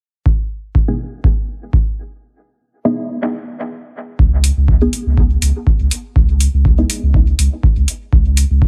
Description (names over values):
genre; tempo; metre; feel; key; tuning
dub techno; 122 BPM; 4/4; swing 54% on 16ths; C# minor; A4 = 436 Hz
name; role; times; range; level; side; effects
electronic kick drum; drums; 0.3-8.7 s; none; -16 LUFS; equal; none
filtered dub chord stab; stabs; 0.9-8.7 s; B3 to G#4; -23 LUFS; equal; phaser, sidechain pumping, dub echo
warm sub bass; bass; 4.2-8.7 s; C#2; -16 LUFS; equal; sidechain pumping
electronic hi-hat; drums; 4.4-8.5 s; none; -22 LUFS; equal; none
room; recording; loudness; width
little or no reverb; none; -15 LUFS; mono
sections
0.3-4.2 A section; 4.2-8.7 B section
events
filter sweep on synth stab 0.3-4.2; break 2.2-4.2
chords
0.3 Badd11; 4.2 C#m7